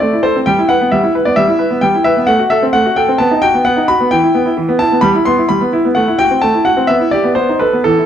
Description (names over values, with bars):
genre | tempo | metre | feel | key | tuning
classical-period piano sonatina | 130 BPM | 4/4 | rubato | E minor | A4 = 440 Hz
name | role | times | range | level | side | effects
bright grand piano | solo | 0.0-8.1 s | E3 to C6 | -10 LUFS | equal | none
room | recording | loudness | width
wet recital hall reverb, RT60 1.6 s | dark, warm production | -10 LUFS | side -9 dB against mid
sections
0.0-8.1 A section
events
none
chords
0.5 Em/G; 2.3 F#dim/A; 3.2 B; 4.1 Em; 5.0 Em/G; 6.0 F#m7b5/A; 6.9 Em/B; 7.4 B7b9